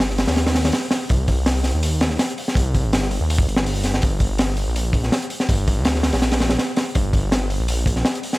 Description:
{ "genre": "drum and bass, jungle", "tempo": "164 BPM", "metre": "4/4", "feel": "swing 53% on 16ths", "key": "C minor", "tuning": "A4 = 440 Hz", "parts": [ { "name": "detuned saw bass", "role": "bass", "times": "0.0-8.0 s", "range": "G1 to Eb2", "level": "-21 LUFS", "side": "equal", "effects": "none" }, { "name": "crunchy breakbeat drum kit", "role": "drums", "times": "0.0-8.4 s", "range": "hi-hat, kick drum, snare drum", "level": "-19 LUFS", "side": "equal", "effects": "none" } ], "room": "little or no reverb", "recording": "none", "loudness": "-18 LUFS", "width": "side -20 dB against mid", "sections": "0.0-8.4 A section", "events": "none", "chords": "none" }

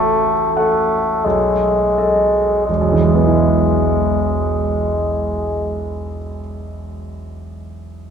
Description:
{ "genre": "classical, romantic duo for bassoon and grand piano", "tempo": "40-49 BPM", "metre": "3/4", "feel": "rubato", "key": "E major", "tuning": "A4 = 440 Hz", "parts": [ { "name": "warm bassoon", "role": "melody", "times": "0.0-5.8 s", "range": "G#3 to A3", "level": "-17 LUFS", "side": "left 2 dB", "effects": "none" }, { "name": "clear concert grand piano", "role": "accompaniment", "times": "0.0-8.1 s", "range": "E1 to F#5", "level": "-18 LUFS", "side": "right 3 dB", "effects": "none" } ], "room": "wet cathedral reverb, RT60 5.0 s", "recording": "recorded in a church or concert hall", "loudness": "-14 LUFS", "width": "side -7 dB against mid", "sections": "0.0-2.7 A section; 2.7-6.7 B section", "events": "slowing down 0.0-2.7", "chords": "0.0 F#m/A; 1.2 B7; 2.7 E" }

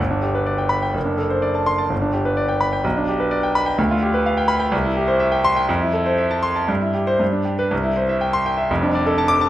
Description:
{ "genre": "classical, virtuoso piano study", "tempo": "116-130 BPM", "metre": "2/4", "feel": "rubato", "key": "G major, C major from 3.8 s", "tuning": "A4 = 440 Hz", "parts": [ { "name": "clear concert grand piano", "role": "solo", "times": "0.0-9.5 s", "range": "F1 to D6", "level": "-17 LUFS", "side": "equal", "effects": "none" } ], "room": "moderate recital hall reverb, RT60 1.4 s", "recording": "none", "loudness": "-17 LUFS", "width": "side -13 dB against mid", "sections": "0.0-7.7 A section; 7.7-9.5 B section", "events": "none", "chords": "0.0 G; 1.0 D7/F#; 1.9 G; 2.8 G/B; 3.8 G7/D; 4.7 C; 5.7 Fmaj7; 6.7 C/G; 7.2 G; 7.7 C; 8.7 Dm/F" }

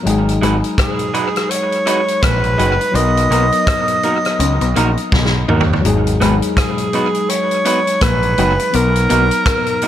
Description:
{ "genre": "lovers rock reggae", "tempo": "83 BPM", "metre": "4/4", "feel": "swing 59% on 16ths", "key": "G# minor", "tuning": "A4 = 441 Hz", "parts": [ { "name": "tine electric piano", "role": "accompaniment", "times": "0.0-9.9 s", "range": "F#3 to A#4", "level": "-22 LUFS", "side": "left 4 dB", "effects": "tape echo" }, { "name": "semi-hollow electric guitar", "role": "riff", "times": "0.1-9.2 s", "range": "F#3 to D#4", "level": "-25 LUFS", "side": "left 8 dB", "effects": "wide subtle chorus, tape echo" }, { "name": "growling picked electric bass", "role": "bass", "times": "0.1-9.3 s", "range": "F#1 to D#2", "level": "-17 LUFS", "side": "equal", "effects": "overdrive" }, { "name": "vintage drum kit", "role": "drums", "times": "0.1-9.9 s", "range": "hi-hat, kick drum, rim click, snare drum, toms", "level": "-20 LUFS", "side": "equal", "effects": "gated reverb, tape echo" }, { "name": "electric guitar through a small old amp", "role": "stabs", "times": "0.4-9.9 s", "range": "G#3 to B4", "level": "-22 LUFS", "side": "right 3 dB", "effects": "tape echo" }, { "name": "bright alto saxophone", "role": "melody", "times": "0.8-9.9 s", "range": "G#4 to D#5", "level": "-18 LUFS", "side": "right 1 dB", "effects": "tape echo" } ], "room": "light reverb, small room reverb", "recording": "none", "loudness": "-13 LUFS", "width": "side -11 dB against mid", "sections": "0.0-9.9 A section", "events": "drum fill 5.1-5.8", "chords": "0.1 G#m7; 3.0 Bmaj7; 5.8 G#m7; 8.7 Bmaj7" }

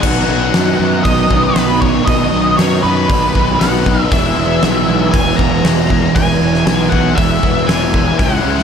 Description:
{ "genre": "rock, shoegaze and dream pop", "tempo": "118 BPM", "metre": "4/4", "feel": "straight", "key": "B major", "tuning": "A4 = 439 Hz", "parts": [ { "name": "octave-fuzz lead guitar", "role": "melody", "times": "0.0-8.6 s", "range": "B4 to A#5", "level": "-18 LUFS", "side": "equal", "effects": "distortion, tape echo" }, { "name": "biting overdriven guitar", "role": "riff", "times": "0.0-8.6 s", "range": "B2 to E4", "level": "-18 LUFS", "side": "left 8 dB", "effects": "analog chorus" }, { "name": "overdriven semi-hollow guitar", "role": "riff", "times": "0.0-8.6 s", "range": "B2 to E4", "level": "-18 LUFS", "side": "right 9 dB", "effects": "reverse reverb" }, { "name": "fuzz fingered electric bass", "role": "bass", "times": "0.0-8.6 s", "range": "E1 to F#2", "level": "-18 LUFS", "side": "equal", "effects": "overdrive" }, { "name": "big rock drum kit", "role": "drums", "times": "0.0-8.6 s", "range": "crash cymbal, hi-hat, kick drum, snare drum", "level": "-17 LUFS", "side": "equal", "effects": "none" } ], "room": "moderate plate reverb, RT60 1.7 s, small room ambience", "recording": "dreamy mix soaked in reverb, faint mains hum", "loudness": "-11 LUFS", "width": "side -7 dB against mid", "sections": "0.0-8.6 A section", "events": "none", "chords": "0.0 B; 4.1 E" }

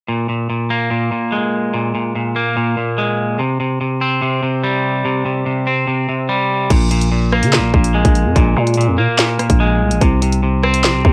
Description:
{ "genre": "hip hop, drill", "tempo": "145 BPM", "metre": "4/4", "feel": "half-time", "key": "unclear", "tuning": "A4 = 440 Hz", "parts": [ { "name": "clean electric guitar", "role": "accompaniment", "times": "0.1-11.1 s", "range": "Bb2 to C4", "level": "-19 LUFS", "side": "equal", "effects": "none" }, { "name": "growling 808-style bass", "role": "bass", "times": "6.7-11.1 s", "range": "Bb1 to Db3", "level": "-18 LUFS", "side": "equal", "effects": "none" }, { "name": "drill drum kit", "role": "drums", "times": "6.7-11.1 s", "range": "crash cymbal, handclaps, hi-hat, kick drum, rim click, snare drum", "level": "-18 LUFS", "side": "equal", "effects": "vintage 12-bit sampler grit" } ], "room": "little or no reverb", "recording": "none", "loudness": "-16 LUFS", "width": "mono", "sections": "0.1-6.7 A section; 6.7-11.1 B section", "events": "none", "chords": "0.1 Absus2/Bb; 3.4 C5; 6.7 Bb7(no3); 10.0 N.C." }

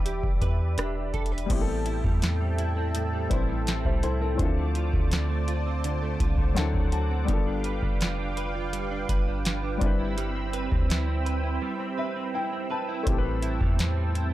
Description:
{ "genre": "contemporary R&B", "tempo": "83 BPM", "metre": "4/4", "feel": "straight", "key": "A minor", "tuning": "A4 = 440 Hz", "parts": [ { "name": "dark baby grand piano", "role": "accompaniment", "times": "0.0-14.3 s", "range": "E3 to A5", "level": "-34 LUFS", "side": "left 6 dB", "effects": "none" }, { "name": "warm analog pad", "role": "sustained chords", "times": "0.0-14.3 s", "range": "C4 to E6", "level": "-34 LUFS", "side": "equal", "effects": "chorus, sidechain pumping" }, { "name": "direct-recorded clean electric guitar", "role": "arpeggios", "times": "0.0-14.3 s", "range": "A2 to B4", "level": "-33 LUFS", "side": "right 6 dB", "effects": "ensemble chorus, tape echo" }, { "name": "soft 808-style bass", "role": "bass", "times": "0.0-14.3 s", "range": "E1 to E2", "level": "-28 LUFS", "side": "equal", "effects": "none" }, { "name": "booming analog drum machine", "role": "drums", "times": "0.1-14.3 s", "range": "crash cymbal, hi-hat, kick drum, rim click, snare drum", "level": "-27 LUFS", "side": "equal", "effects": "none" } ], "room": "digital ambience", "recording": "dark, warm production", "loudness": "-24 LUFS", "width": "side -15 dB against mid", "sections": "0.0-1.5 A section; 1.5-14.3 B section", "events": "grand piano fill 6.2-7.3, 11.6-13.1; break 11.6-13.1", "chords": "0.0 Em7; 1.5 Am7; 4.4 Dm7; 6.6 D7; 7.3 G7; 9.8 Cmaj7/G; 13.1 Am7" }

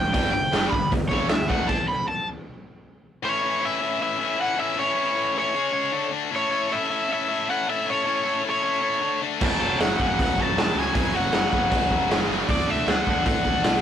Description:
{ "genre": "punk rock", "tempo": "156 BPM", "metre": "4/4", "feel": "straight", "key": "A major", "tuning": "A4 = 440 Hz", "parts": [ { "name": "cranked stack guitar", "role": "melody", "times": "0.0-13.8 s", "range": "C#5 to B5", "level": "-24 LUFS", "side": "equal", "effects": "overdrive" }, { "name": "distorted electric guitar", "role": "riff", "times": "0.0-1.7, 9.4-13.8 s", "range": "E2 to D4", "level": "-29 LUFS", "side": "right 6 dB", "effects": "overdrive" }, { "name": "tight distorted guitar", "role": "riff", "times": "0.0-13.8 s", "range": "G2 to A4", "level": "-26 LUFS", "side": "left 6 dB", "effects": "distortion" }, { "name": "picked electric bass", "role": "bass", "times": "0.0-1.6, 9.4-13.8 s", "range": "E1 to A2", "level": "-34 LUFS", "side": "right 1 dB", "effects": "none" }, { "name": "raw garage drum kit", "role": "drums", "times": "0.1-1.8, 9.4-13.7 s", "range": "crash cymbal, hi-hat, kick drum, snare drum", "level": "-24 LUFS", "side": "equal", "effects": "none" } ], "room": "light reverb", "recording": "rough rehearsal-room recording, warm saturation", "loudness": "-21 LUFS", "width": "side -9 dB against mid", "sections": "0.0-3.2 A section; 3.2-13.8 B section", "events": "overdriven electric guitar solo 0.0-3.2; stop 1.7-3.2", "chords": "0.1 G5; 1.5 D5; 3.2 A; 5.6 C#5; 5.9 D5; 6.3 A; 9.0 D5; 9.4 F#m; 12.5 D" }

